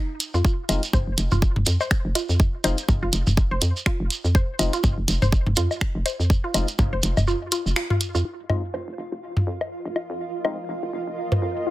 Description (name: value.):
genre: minimal techno.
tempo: 123 BPM.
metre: 4/4.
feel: swing 57% on 16ths.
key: F minor.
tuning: A4 = 440 Hz.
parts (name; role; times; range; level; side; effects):
garage drum kit; drums; 0.2-8.1 s; finger snaps, hi-hat; -24 LUFS; equal; soft clipping on snare, low-pass filter on snare, low-pass filter on hats.
shekere; percussion; 0.2-8.2 s; none; -32 LUFS; right 4 dB; none.
resonant blip pluck; riff; 0.3-11.7 s; F4 to C5; -30 LUFS; equal; chorus, sidechain pumping, dub echo.
hollow knocking FM bass; bass; 0.3-11.5 s; F1 to F2; -24 LUFS; equal; sidechain pumping, high-pass filter.
electronic kick drum; drums; 0.4-6.9 s; none; -21 LUFS; equal; none.
percussive organ stab; stabs; 0.7-10.6 s; Ab3 to F4; -33 LUFS; left 4 dB; analog chorus, dub echo.
electronic woodblock and toms; percussion; 0.7-11.4 s; none; -25 LUFS; left 1 dB; none.
granular cloud pad; texture; 9.3-11.7 s; F4 to G5; -31 LUFS; right 3 dB; built-in reverb, sidechain pumping.
pulsing gated texture; texture; 8.3-11.7 s; F4 to F5; -35 LUFS; equal; chorus, built-in reverb, sidechain pumping.
room: light reverb.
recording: dense, heavily limited modern master.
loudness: -21 LUFS.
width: side -16 dB against mid.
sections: 0.0-8.3 A section; 8.3-11.7 B section.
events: kick drops out 7.3-8.3; band accent 7.8; filter sweep on synth arpeggio sound 8.3-11.7; filter sweep on synth stab 8.3-11.7.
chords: 0.0 Fm7.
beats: | 0.45 0.93 1.42 1.91 | 2.40 2.88 3.37 3.86 | 4.35 4.84 5.33 5.81 | 6.30 6.79 7.28 7.76 | 8.25 8.74 9.23 9.71 | 10.20 10.69 11.18 11.67.